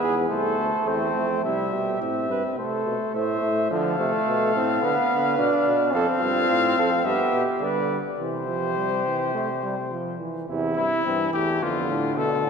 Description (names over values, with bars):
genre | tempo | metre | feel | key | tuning
classical, imitative canzona for brass ensemble | 106 BPM | 4/4 | straight | C major from 5.9 s | A4 = 436 Hz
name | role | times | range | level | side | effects
mellow trumpet | melody | 0.0-12.5 s | E4 to F5 | -26 LUFS | left 6 dB | none
mellow flugelhorn | second line | 0.0-12.5 s | A3 to C5 | -27 LUFS | right 4 dB | none
clear trombone | accompaniment | 0.0-12.5 s | C3 to D4 | -26 LUFS | right 1 dB | none
clear bass trombone | bass | 0.0-12.5 s | C2 to D3 | -30 LUFS | right 1 dB | none
room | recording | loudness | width
wet church reverb, RT60 3.5 s | minimal, uncompressed stereo recording, faint mains hum | -21 LUFS | side -6 dB against mid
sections
0.0-1.4 A section; 1.4-10.5 B section; 10.5-12.5 C section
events
none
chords
0.3 Am/C; 1.4 C; 2.6 Am; 3.7 Dm; 4.8 Bdim/D; 5.9 Fadd9; 7.1 G; 8.2 C; 10.5 C/E; 11.6 Dm/F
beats
0.30 0.87 | 1.44 2.02 2.58 3.15 | 3.71 4.28 4.83 5.39 | 5.94 6.49 7.05 7.62 | 8.19 8.77 9.35 9.92 | 10.49 11.06 11.62 12.18